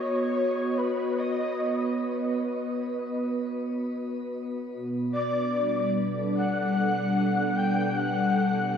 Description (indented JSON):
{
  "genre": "ambient",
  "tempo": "75 BPM",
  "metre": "4/4",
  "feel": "straight",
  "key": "B major",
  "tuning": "A4 = 438 Hz",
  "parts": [
    { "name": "breathy flute-like synth lead", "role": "melody", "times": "0.0-8.8 s", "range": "B4 to G5", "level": "-29 LUFS", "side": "left 1 dB", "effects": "ensemble chorus, shimmer reverb, diffuse ambient delay" },
    { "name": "warm analog pad", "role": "sustained chords", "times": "0.0-8.8 s", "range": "B2 to D#5", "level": "-27 LUFS", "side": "equal", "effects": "chorus, shimmer reverb" },
    { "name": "analog drone", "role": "drone", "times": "6.1-8.8 s", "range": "B3", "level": "-43 LUFS", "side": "left 2 dB", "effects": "none" }
  ],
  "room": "wet huge ambient reverb, RT60 9.0 s",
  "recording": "dreamy mix soaked in reverb, studio reverb",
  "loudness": "-25 LUFS",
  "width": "side -7 dB against mid",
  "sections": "0.0-8.8 A section",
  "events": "none",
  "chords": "0.0 B; 4.8 G/B"
}